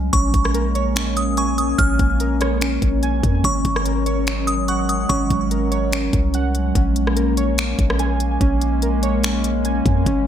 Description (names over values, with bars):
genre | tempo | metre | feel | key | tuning
hip hop, atmospheric cloud-rap | 145 BPM | 4/4 | half-time | Bb minor | A4 = 442 Hz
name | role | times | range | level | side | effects
warbly tape-like pad | sustained chords | 0.0-10.3 s | Gb3 to Db4 | -23 LUFS | left 1 dB | chorus, built-in reverb, sidechain pumping
warm 808-style bass | bass | 0.0-10.3 s | Ab1 to F2 | -22 LUFS | equal | none
delicate synth tine bell | melody | 0.1-5.5 s | Db6 to F6 | -24 LUFS | right 1 dB | chorus, ping-pong delay
warbly lo-fi synth keys | arpeggios | 0.1-10.3 s | Db4 to Ab5 | -25 LUFS | right 3 dB | chorus, ping-pong delay
smooth R&B drum kit | drums | 0.1-10.2 s | finger snaps, hi-hat, kick drum, rim click | -22 LUFS | equal | gated reverb
room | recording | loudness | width
light reverb, digital ambience | bright 1980s-style digital production | -17 LUFS | side -9 dB against mid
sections
0.0-6.8 A section; 6.8-10.3 B section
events
none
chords
0.1 Bbm7; 3.4 Ab9sus4; 6.8 Bbm7